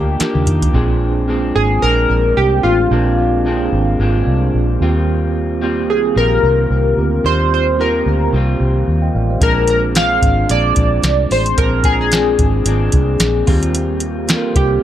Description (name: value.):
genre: indie pop, bedroom pop.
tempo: 111 BPM.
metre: 4/4.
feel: swing 55% on 16ths.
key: unclear.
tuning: A4 = 440 Hz.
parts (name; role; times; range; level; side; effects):
chorused retro synth keys; melody; 0.0-14.8 s; F4 to F5; -17 LUFS; equal; wide subtle chorus, digital delay.
electric guitar through a small old amp; accompaniment; 0.0-14.8 s; Bb2 to G4; -23 LUFS; left 4 dB; lush chorus, warbly pitch drift.
mellow tine electric piano; accompaniment; 0.0-14.8 s; Bb3 to G5; -21 LUFS; right 5 dB; medium stereo tremolo.
vintage muted fingered electric bass; bass; 0.0-14.8 s; Ab1 to Eb3; -17 LUFS; equal; none.
soft vintage rhythm box; drums; 0.2-0.7, 9.4-14.7 s; hi-hat, kick drum, snare drum, toms; -17 LUFS; equal; none.
group handclap; percussion; 0.2-0.3, 10.0-14.4 s; none; -29 LUFS; left 3 dB; none.
room: light reverb.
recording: none.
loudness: -12 LUFS.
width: side -11 dB against mid.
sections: 0.8-14.8 A section.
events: drum fill 0.2-0.8.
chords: 0.0 Ebmaj7; 0.8 Bb9; 4.8 Eb69; 9.4 Bb9; 13.5 Eb69.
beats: 0.21 | 0.75 1.29 1.84 2.38 | 2.92 3.46 4.00 4.54 | 5.08 5.63 6.17 6.71 | 7.25 7.79 8.33 8.88 | 9.42 9.96 10.50 11.04 | 11.58 12.12 12.66 13.21 | 13.75 14.29.